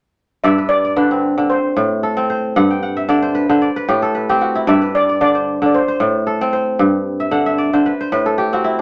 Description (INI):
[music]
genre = west african traditional, West African string and xylophone music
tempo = 113 BPM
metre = 4/4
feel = swing 54% on 16ths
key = G major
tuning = A4 = 437 Hz
[part]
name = steel pan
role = melody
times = 0.4-6.5 s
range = B4 to E5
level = -20 LUFS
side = equal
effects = none
[part]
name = kora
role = arpeggios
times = 0.4-8.8 s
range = G2 to G5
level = -17 LUFS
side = equal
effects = none
[sound]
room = wet studio reverb, RT60 0.6 s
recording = none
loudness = -16 LUFS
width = mono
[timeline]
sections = 0.4-8.8 A section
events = kora fill 2.6-4.7, 7.2-8.8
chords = 0.4 G; 1.5 Am; 2.6 G5; 3.6 Am; 4.7 G; 5.7 Am; 6.8 G5; 7.9 Am